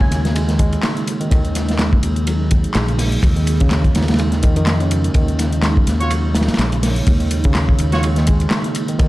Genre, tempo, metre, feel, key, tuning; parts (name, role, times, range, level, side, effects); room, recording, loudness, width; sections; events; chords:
breakbeat, breaks; 125 BPM; 4/4; swing 55% on 16ths; A4 = 439 Hz
deep dark ambient pad; sustained chords; 0.0-9.1 s; Bb3 to Eb5; -27 LUFS; right 2 dB; chorus, built-in reverb, sidechain pumping
reed electric piano; riff; 0.0-9.1 s; Db3 to Eb4; -22 LUFS; equal; overdrive, dub echo
fingered electric bass; bass; 0.0-9.1 s; Bb1 to F2; -19 LUFS; equal
crunchy breakbeat drum kit; drums; 0.0-9.1 s; hi-hat, kick drum, ride cymbal, snare drum; -18 LUFS; equal
punchy analog drum machine; drums; 0.1-9.1 s; handclaps, hi-hat; -27 LUFS; left 1 dB; overdrive
clear horn section; stabs; 6.0-8.0 s; F4 to Db5; -26 LUFS; right 2 dB; dub echo
small room reverb; dark, warm production; -14 LUFS; side -18 dB against mid
0.0-9.1 A section
0.0 Ebm7